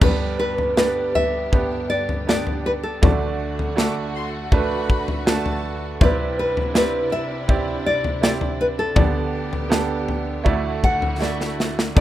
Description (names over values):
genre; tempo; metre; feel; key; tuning
pop ballad; 80 BPM; 4/4; straight; G major; A4 = 440 Hz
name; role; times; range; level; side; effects
nylon-string guitar; melody; 0.0-12.0 s; A4 to F#5; -24 LUFS; left 1 dB; none
bright upright piano; accompaniment; 0.0-12.0 s; G1 to D5; -25 LUFS; right 5 dB; none
warm studio string section; sustained chords; 0.0-12.0 s; C2 to G4; -32 LUFS; left 2 dB; none
modern studio drum kit; drums; 0.0-12.0 s; crash cymbal, kick drum, snare drum, toms; -20 LUFS; left 1 dB; none
warm studio violin section; second line; 3.8-5.8 s; A5 to D6; -33 LUFS; left 4 dB; none
room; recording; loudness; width
small room ambience; rough home demo mix; -19 LUFS; side -13 dB against mid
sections
0.0-12.0 A section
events
drum fill 11.2-12.0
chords
0.0 G; 3.0 D; 6.0 Cadd9; 9.0 G/D; 10.5 Dadd9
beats
| 0.02 0.77 1.53 2.28 | 3.03 3.77 4.52 5.27 | 6.01 6.75 7.49 8.22 | 8.96 9.71 10.46 11.21 | 11.97